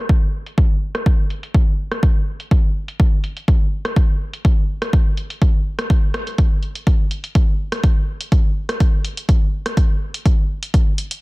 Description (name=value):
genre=house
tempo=124 BPM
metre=4/4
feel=swing 53% on 16ths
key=none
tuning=none
part: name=electronic kick drum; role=drums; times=0.1-10.8 s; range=none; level=-15 LUFS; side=equal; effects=overdrive
part: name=punchy analog drum machine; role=drums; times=0.1-11.2 s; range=hi-hat, rim click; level=-27 LUFS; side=equal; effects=overdrive, low-pass filter on hats, low-pass filter on perc, low-pass filter on snare, low-pass filter on room
room=little or no reverb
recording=dense, heavily limited modern master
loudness=-16 LUFS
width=side -23 dB against mid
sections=0.0-11.2 A section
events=filter sweep on drum 0.0-11.2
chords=none